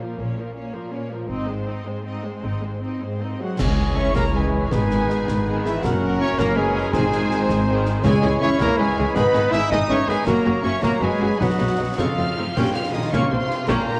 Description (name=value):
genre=cinematic, heroic adventure film score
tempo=108 BPM (dotted quarters)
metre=6/8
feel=straight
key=C# dorian from 3.6 s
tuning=A4 = 439 Hz
part: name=warm symphonic violin section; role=melody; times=0.0-14.0 s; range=Bb4 to G6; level=-34 LUFS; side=equal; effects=none
part: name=warm symphonic violin section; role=second line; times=0.0-14.0 s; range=Bb3 to A#4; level=-34 LUFS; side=equal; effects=none
part: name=warm studio viola section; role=accompaniment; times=0.0-13.9 s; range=D#3 to C#4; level=-31 LUFS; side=equal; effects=none
part: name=warm symphonic cello section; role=bass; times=0.0-14.0 s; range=Ab2 to E4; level=-29 LUFS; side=equal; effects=none
part: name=warm symphonic double bass section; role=bass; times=0.2-13.8 s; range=F#1 to F2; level=-29 LUFS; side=equal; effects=none
part: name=cymbal swell, clash cymbals, concert bass drum and tam-tam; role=percussion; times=1.3-4.3, 10.3-14.0 s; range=none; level=-32 LUFS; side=equal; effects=none
part: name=silver concert flute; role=second line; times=3.4-14.0 s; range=Ab4 to G#5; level=-33 LUFS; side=equal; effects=none
part: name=dark French horn section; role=sustained chords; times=3.4-14.0 s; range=E3 to G4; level=-30 LUFS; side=equal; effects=none
part: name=warm trumpet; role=stabs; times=3.4-12.6 s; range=E4 to E5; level=-30 LUFS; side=equal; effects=none
part: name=mellow clarinet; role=second line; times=3.6-12.4 s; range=C#4 to A4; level=-33 LUFS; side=equal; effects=none
part: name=mellow cor anglais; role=second line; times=3.6-14.0 s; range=A#4 to G5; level=-32 LUFS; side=equal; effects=none
part: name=concert snare drum, clash cymbals and concert bass drum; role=drums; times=3.6-13.9 s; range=none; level=-31 LUFS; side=equal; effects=none
part: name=timpani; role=percussion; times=3.6-8.6 s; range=G#2 to C#3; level=-32 LUFS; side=equal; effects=none
room=moderate scoring stage reverb, RT60 1.9 s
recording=worn, warbling old tape, cassette tape, warbly pitch drift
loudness=-21 LUFS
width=mono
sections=0.0-3.6 A section; 3.6-12.6 B section; 12.6-14.0 C section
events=band accent 3.6-4.0, 12.6-12.9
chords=0.0 Bbm; 1.3 Ab; 3.6 C#m; 4.7 G#m; 5.8 F#; 6.9 G#; 8.0 C#m; 9.2 G#m; 10.3 F#; 11.4 B; 12.0 F7; 12.6 Bbm